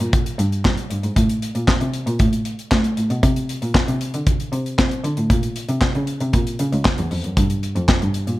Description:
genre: early-eighties boogie funk.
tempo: 116 BPM.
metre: 4/4.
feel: straight.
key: G dorian.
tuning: A4 = 440 Hz.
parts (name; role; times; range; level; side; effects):
muted cello; bass; 0.0-8.4 s; Db2 to C4; -21 LUFS; equal; none.
modern studio drum kit; drums; 0.0-8.4 s; handclaps, hi-hat, kick drum, snare drum; -19 LUFS; equal; none.
room: little or no reverb.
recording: none.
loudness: -17 LUFS.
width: side -17 dB against mid.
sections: 0.0-8.4 A section.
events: none.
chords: none.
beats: 0.13 0.65 | 1.16 1.68 2.20 2.72 | 3.23 3.75 4.27 4.79 | 5.30 5.82 6.34 6.85 | 7.37 7.89.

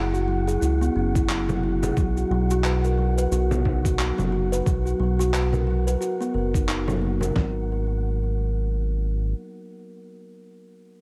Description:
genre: organic downtempo.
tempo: 89 BPM.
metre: 4/4.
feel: swing 58% on 16ths.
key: unclear.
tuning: A4 = 440 Hz.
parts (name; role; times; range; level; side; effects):
kalimba; arpeggios; 0.0-7.7 s; F#3 to B4; -29 LUFS; equal; delay.
round analog bass; bass; 0.0-9.3 s; F#1 to C#2; -27 LUFS; equal; sidechain pumping.
wind-like tuned noise texture; texture; 0.0-7.4 s; F#4 to F#5; -39 LUFS; equal; built-in reverb.
electronic shaker and handclaps; drums; 0.1-7.3 s; none; -35 LUFS; equal; overdrive.
dusty soul sampler-style drum kit; drums; 1.2-7.5 s; kick drum, snare drum; -26 LUFS; equal; overdrive.
frame drum; percussion; 1.5-7.3 s; none; -33 LUFS; equal; none.
room: light reverb.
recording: none.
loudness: -24 LUFS.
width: mono.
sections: 0.0-7.4 A section; 7.4-10.1 B section.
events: none.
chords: 0.0 F#7sus2; 2.0 Bmaj7(no3); 7.4 N.C..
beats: 0.62 1.29 | 1.96 2.64 3.31 3.99 | 4.66 5.33 6.01 6.68 | 7.36 8.03 8.71.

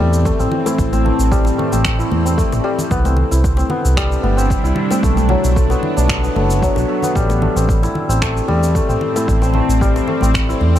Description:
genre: organic downtempo.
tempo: 113 BPM.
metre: 4/4.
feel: straight.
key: A dorian.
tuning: A4 = 441 Hz.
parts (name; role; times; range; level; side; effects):
bowed-like drone; sustained chords; 0.0-10.8 s; A2 to E4; -22 LUFS; equal; built-in reverb, phaser, sidechain pumping.
santur; arpeggios; 0.0-10.8 s; F#3 to E4; -19 LUFS; left 2 dB; vintage 12-bit sampler grit, digital delay.
smooth gliding synth bass; bass; 0.0-10.8 s; F#1 to E2; -16 LUFS; equal; sidechain pumping.
electronic shaker and finger snaps; drums; 0.1-10.8 s; none; -27 LUFS; equal; overdrive.
electronic kick drum; drums; 0.3-10.5 s; none; -20 LUFS; equal; overdrive.
congas and bongos; percussion; 0.5-10.7 s; none; -26 LUFS; left 2 dB; none.
room: little or no reverb.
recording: none.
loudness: -13 LUFS.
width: side -11 dB against mid.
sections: 0.0-10.8 A section.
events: none.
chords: 0.0 Am7; 2.9 Cmaj7; 5.0 Bm7; 7.2 Am7.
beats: 0.25 | 0.79 1.32 1.85 2.38 | 2.91 3.44 3.97 4.50 | 5.03 5.56 6.09 6.62 | 7.16 7.69 8.22 8.75 | 9.28 9.81 10.34.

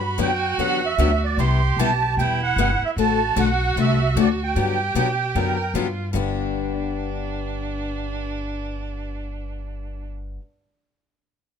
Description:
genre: acoustic string swing (jazz manouche).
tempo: 151 BPM.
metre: 4/4.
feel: swing 62% on 8ths.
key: G major.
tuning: A4 = 438 Hz.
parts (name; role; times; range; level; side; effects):
musette accordion; melody; 0.0-5.7 s; D5 to C6; -23 LUFS; right 5 dB; none.
clear violin; second line; 0.0-10.1 s; D4 to Bb4; -29 LUFS; right 5 dB; none.
upright bass; bass; 0.0-10.4 s; E1 to B2; -25 LUFS; equal; none.
picked steel-string acoustic guitar; accompaniment; 0.2-10.4 s; G2 to A4; -24 LUFS; left 9 dB; none.
room: light reverb.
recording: minimal, uncompressed stereo recording.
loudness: -19 LUFS.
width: side -7 dB against mid.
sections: 0.0-6.1 A section; 6.1-9.3 B section.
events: none.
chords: 0.0 Gmaj7; 1.4 Cmaj7; 3.0 D7; 4.6 Gmaj7; 6.1 G.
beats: 0.19 0.59 0.98 | 1.38 1.78 2.18 2.57 | 2.97 3.37 3.76 4.16 | 4.56 4.95 5.35 5.75 | 6.15 6.54 6.94 7.34 | 7.73 8.13 8.53 8.93.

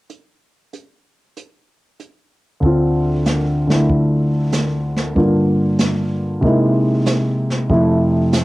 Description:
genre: jazz piano trio.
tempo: 95 BPM.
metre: 4/4.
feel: swing 69% on 8ths.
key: D minor.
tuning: A4 = 440 Hz.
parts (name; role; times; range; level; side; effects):
jazz brush drum kit; drums; 0.1-8.4 s; brushed snare drum, hi-hat, kick drum, snare drum; -20 LUFS; right 1 dB; cassette tape.
warm concert grand piano; melody; 2.6-8.4 s; D2 to F4; -15 LUFS; equal; cassette tape.
room: light reverb.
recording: home recording on cassette.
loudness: -14 LUFS.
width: side -19 dB against mid.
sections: 0.1-2.6 A section; 2.6-8.4 B section.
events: none.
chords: 0.1 N.C.; 2.6 Dm7; 5.2 Gm7; 6.4 C7alt; 7.7 Fmaj7.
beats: | 0.09 0.73 1.36 2.00 | 2.63 3.26 3.90 4.53 | 5.16 5.80 6.43 7.07 | 7.70 8.33.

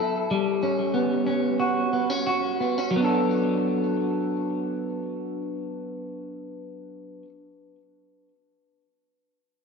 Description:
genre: dream pop.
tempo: 86-97 BPM.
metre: 4/4.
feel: straight.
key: D major.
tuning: A4 = 441 Hz.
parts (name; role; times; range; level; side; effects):
electric guitar at the edge of break-up; arpeggios; 0.0-7.3 s; F#3 to A4; -24 LUFS; equal; lush chorus, ping-pong delay.
room: wet plate reverb, RT60 2.4 s.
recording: none.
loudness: -23 LUFS.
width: side -4 dB against mid.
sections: 0.0-2.9 A section; 2.9-5.7 B section.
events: slowing down 0.0-2.9.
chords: 0.3 Gmaj7#11; 2.9 D6.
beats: | 0.31 0.94 1.59 2.26 | 2.94 3.64 4.34 5.04.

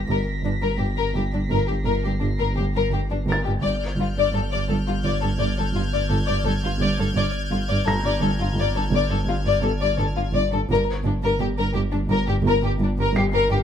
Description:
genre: cinematic, suspense film score.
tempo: 85 BPM.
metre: 5/4.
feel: straight.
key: G minor.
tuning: A4 = 441 Hz.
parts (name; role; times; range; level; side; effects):
saturated sub bass; drone; 0.0-13.6 s; G1; -27 LUFS; equal; none.
clear symphonic violin section; texture; 0.0-10.3 s; F6 to B6; -34 LUFS; left 1 dB; none.
felt-muted upright piano; texture; 0.0-13.6 s; Bb5 to C7; -32 LUFS; equal; none.
warm symphonic violin section; melody; 0.1-13.6 s; D4 to D5; -25 LUFS; left 5 dB; none.
rich symphonic cello section; bass; 0.1-13.6 s; G2; -27 LUFS; right 2 dB; none.
warm studio double bass section; bass; 0.1-13.6 s; G1; -27 LUFS; right 2 dB; none.
room: light reverb.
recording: close, detailed microphones.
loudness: -20 LUFS.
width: side -9 dB against mid.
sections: 0.0-13.6 A section.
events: none.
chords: 0.0 Gm.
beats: | 0.09 0.80 1.51 2.22 2.93 | 3.63 4.34 5.05 5.75 6.46 | 7.16 7.87 8.58 9.29 9.99 | 10.70 11.40 12.10 12.80 13.51.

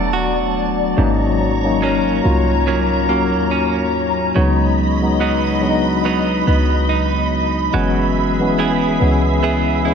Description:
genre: R&B.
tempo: 71 BPM.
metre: 4/4.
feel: swing 58% on 16ths.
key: unclear.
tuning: A4 = 440 Hz.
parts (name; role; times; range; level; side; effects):
mellow tine electric piano; accompaniment; 0.0-9.9 s; E3 to F#4; -19 LUFS; left 3 dB; medium stereo tremolo.
glassy FM pad; sustained chords; 0.0-9.9 s; F#3 to B5; -20 LUFS; left 1 dB; ensemble chorus, built-in reverb.
direct-recorded clean electric guitar; arpeggios; 0.0-9.9 s; G#2 to G#4; -22 LUFS; right 8 dB; ping-pong delay.
clean 808-style bass; bass; 0.0-9.9 s; E1 to D#2; -20 LUFS; equal; none.
room: light reverb, digital ambience.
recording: none.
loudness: -14 LUFS.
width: side -7 dB against mid.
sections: 0.0-9.9 A section.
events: none.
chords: 0.0 E9sus4; 1.0 G#9sus4; 4.4 C#9sus4; 7.7 F#9sus4.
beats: 0.14 | 0.98 1.82 2.67 3.52 | 4.36 5.21 6.05 6.90 | 7.74 8.59 9.43.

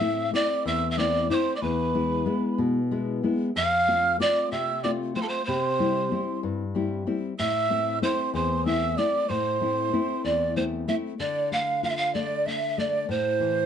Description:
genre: andean folk, Andean ensemble.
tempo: 63 BPM (dotted quarters).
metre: 6/8.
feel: straight.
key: A minor.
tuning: A4 = 440 Hz.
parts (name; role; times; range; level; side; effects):
breathy mellow pan flute; melody; 0.0-13.7 s; A4 to F5; -26 LUFS; right 2 dB; none.
breathy mellow quena; second line; 0.0-13.7 s; C5 to F6; -30 LUFS; right 4 dB; none.
nylon-string guitar; accompaniment; 0.0-13.7 s; E2 to F4; -27 LUFS; left 4 dB; none.
room: wet small room reverb, RT60 0.6 s.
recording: nothing above 10.6 kHz.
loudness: -23 LUFS.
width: side -8 dB against mid.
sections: 0.0-11.2 A section; 11.2-13.7 B section.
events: speeding up 0.0-13.7.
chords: 0.0 Am; 1.6 E; 3.6 F; 5.5 C; 7.4 Am; 11.2 Dm; 13.1 Am.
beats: 0.65 | 1.62 2.59 | 3.55 4.51 | 5.47 6.43 | 7.39 8.34 | 9.29 10.24 | 11.19 12.14 | 13.09.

